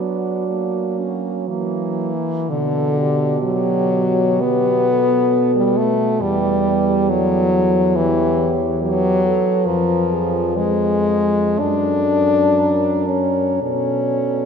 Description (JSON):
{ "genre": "classical, lyrical piece for horn quartet", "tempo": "56-72 BPM", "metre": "4/4", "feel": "rubato", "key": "B minor", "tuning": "A4 = 440 Hz", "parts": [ { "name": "mellow French horn", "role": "melody", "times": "0.0-14.5 s", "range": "F#4 to D5", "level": "-28 LUFS", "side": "left 6 dB", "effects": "none" }, { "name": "warm French horn", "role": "second line", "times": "0.0-14.5 s", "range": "A#3 to A#4", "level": "-25 LUFS", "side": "right 8 dB", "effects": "none" }, { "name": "warm French horn", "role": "accompaniment", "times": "0.0-14.5 s", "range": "D3 to D4", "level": "-18 LUFS", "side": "left 2 dB", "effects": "none" }, { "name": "dark French horn", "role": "bass", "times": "0.0-14.5 s", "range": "E2 to F#3", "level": "-23 LUFS", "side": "right 4 dB", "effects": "none" } ], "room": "wet cathedral reverb, RT60 4.6 s", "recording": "none", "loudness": "-16 LUFS", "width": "side -6 dB against mid", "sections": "0.0-2.5 A section; 2.5-14.5 B section", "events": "none", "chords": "0.5 F#; 2.5 Bm; 6.2 Em; 9.7 Fdim; 11.6 D/F#; 12.6 F#; 13.6 Bm" }